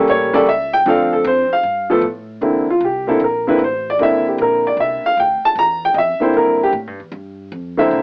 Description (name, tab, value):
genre	jazz piano trio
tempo	153 BPM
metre	4/4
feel	swing 66% on 8ths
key	C mixolydian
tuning	A4 = 439 Hz
part	warm upright piano	melody	0.0-8.0 s	D3 to Bb5	-13 LUFS	equal	cassette tape
part	upright bass	bass	0.0-8.0 s	G1 to A2	-32 LUFS	equal	none
room	light reverb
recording	home recording on cassette, AM radio sound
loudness	-13 LUFS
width	side -35 dB against mid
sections	0.0-2.4 A section; 2.4-8.0 B section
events	upright piano solo 0.0-2.4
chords	0.1 A7b9; 0.9 Dm7; 1.6 G7sus2; 2.4 C9; 7.1 Gm7